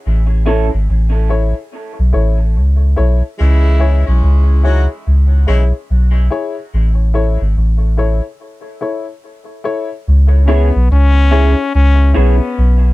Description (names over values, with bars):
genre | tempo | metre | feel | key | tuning
reggae | 72 BPM | 4/4 | swing 62% on 16ths | C# minor | A4 = 439 Hz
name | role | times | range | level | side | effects
soft dub sub bass | bass | 0.1-12.9 s | G#1 to C#2 | -10 LUFS | equal | none
electric guitar through a small old amp | accompaniment | 0.5-0.7, 10.5-12.3 s | C#4 to A4 | -23 LUFS | right 5 dB | wide subtle chorus, dub echo
dark upright piano | stabs | 0.5-12.5 s | E4 to C#5 | -23 LUFS | left 4 dB | dub echo
warm horn section | second line | 3.4-5.6 s | C#3 to G#4 | -24 LUFS | right 1 dB | dub echo
brilliant trombone | melody | 10.4-12.9 s | B3 to C#4 | -18 LUFS | left 4 dB | dub echo
room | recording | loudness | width
little or no reverb | dry, close 1970s-style studio recording | -11 LUFS | side -19 dB against mid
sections
0.0-10.1 A section; 10.1-12.9 B section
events
break 0.0-10.1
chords
0.0 A; 3.4 C#m; 6.7 A; 10.1 C#m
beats
| 0.04 0.88 1.71 2.55 | 3.38 4.22 5.05 5.89 | 6.72 7.56 8.39 9.22 | 10.06 10.89 11.73 12.56